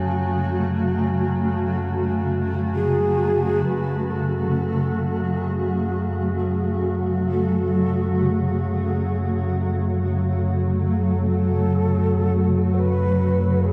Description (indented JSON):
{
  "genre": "dark ambient drone",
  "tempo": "free time",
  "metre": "none",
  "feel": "none",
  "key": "F# minor",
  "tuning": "A4 = 436 Hz",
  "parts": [
    { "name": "granular cloud pad", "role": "sustained chords", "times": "0.0-13.7 s", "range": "C#3 to F#4", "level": "-26 LUFS", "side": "equal", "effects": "built-in reverb" },
    { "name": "deep rumbling drone", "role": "drone", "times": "0.0-13.7 s", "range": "F#2 to F#3", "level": "-25 LUFS", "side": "equal", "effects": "built-in reverb" },
    { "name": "bronze singing bowl", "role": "texture", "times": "0.0-3.7 s", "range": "G#5", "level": "-41 LUFS", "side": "equal", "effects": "none" },
    { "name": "breathy mellow shakuhachi", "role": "melody", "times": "2.8-13.7 s", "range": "G#4 to C#5", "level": "-30 LUFS", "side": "equal", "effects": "delay" }
  ],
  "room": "wet cathedral reverb, RT60 4.8 s",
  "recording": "dark, warm production",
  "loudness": "-22 LUFS",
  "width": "mono",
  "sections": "0.0-3.7 A section; 3.7-13.7 B section",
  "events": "fade-in on shakuhachi 3.7-13.7",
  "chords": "0.0 F#madd9"
}